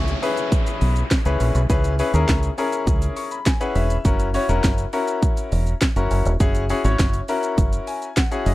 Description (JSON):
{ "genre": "dance-pop", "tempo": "102 BPM", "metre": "4/4", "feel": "straight", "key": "unclear", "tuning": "A4 = 440 Hz", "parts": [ { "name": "bright grand piano", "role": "accompaniment", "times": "0.0-8.5 s", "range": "C#4 to C#6", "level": "-23 LUFS", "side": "left 3 dB", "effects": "sidechain pumping" }, { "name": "deep dub fingered electric bass", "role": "bass", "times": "0.0-8.5 s", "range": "E1 to D#2", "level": "-20 LUFS", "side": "equal", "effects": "sidechain pumping" }, { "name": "downlifter", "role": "sound effects", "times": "0.0-4.0 s", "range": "none", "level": "-34 LUFS", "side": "equal", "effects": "none" }, { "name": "house drum kit", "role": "drums", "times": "0.1-8.5 s", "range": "handclaps, hi-hat, kick drum, shaker, snare drum", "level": "-21 LUFS", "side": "equal", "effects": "none" } ], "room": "little or no reverb", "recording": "dry, close 1970s-style studio recording", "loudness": "-18 LUFS", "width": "side -17 dB against mid", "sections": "0.0-8.5 A section", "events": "grand piano fill 2.9-4.0, 7.6-8.5", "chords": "0.0 C#m7; 4.0 F#7" }